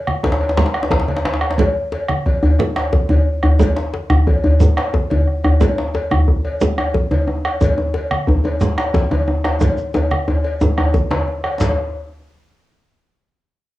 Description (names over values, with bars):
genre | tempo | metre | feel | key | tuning
west african traditional, West African drum ensemble | 120 BPM (dotted quarters) | 12/8 | straight | none | none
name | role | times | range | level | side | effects
bombo | percussion | 0.1-11.8 s | none | -20 LUFS | right 1 dB | none
congas | percussion | 0.1-11.8 s | none | -20 LUFS | right 1 dB | none
cowbell | percussion | 0.2-11.8 s | none | -24 LUFS | left 2 dB | none
djembe | percussion | 0.2-11.8 s | none | -24 LUFS | left 2 dB | none
djembe | percussion | 0.2-11.8 s | none | -17 LUFS | equal | none
shekere | percussion | 3.6-11.8 s | none | -28 LUFS | equal | none
room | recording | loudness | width
moderate studio ambience, RT60 0.5 s | home recording on cassette, small room reverb | -15 LUFS | side -16 dB against mid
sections
0.0-11.6 A section; 11.6-13.6 B section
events
drum fill 9.6-11.6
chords
none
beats
0.07 0.57 1.08 | 1.58 2.09 2.59 3.10 | 3.60 4.10 4.60 5.11 | 5.61 6.11 6.61 7.11 | 7.61 8.11 8.61 9.11 | 9.61 10.11 10.61 11.11 | 11.61